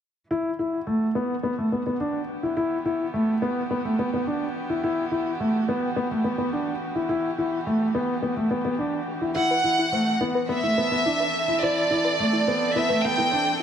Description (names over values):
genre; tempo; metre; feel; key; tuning
electronica; 106 BPM; 4/4; straight; E minor; A4 = 442 Hz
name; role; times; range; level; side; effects
dark string quartet; sustained chords; 0.3-13.6 s; E3 to A4; -34 LUFS; right 2 dB; none
dark grand piano; riff; 0.3-13.5 s; A3 to E4; -24 LUFS; left 1 dB; digital delay
warm chamber violin section; melody; 9.4-13.6 s; D5 to G5; -22 LUFS; right 2 dB; none
soft round pluck; arpeggios; 9.4-13.6 s; E4 to C5; -31 LUFS; left 2 dB; chorus, digital delay
room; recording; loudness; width
moderate concert hall reverb, RT60 2.5 s; none; -22 LUFS; side -8 dB against mid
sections
0.3-13.6 A section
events
fade-in on string quartet 0.3-13.6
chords
0.3 Emadd9; 9.4 Amadd9/E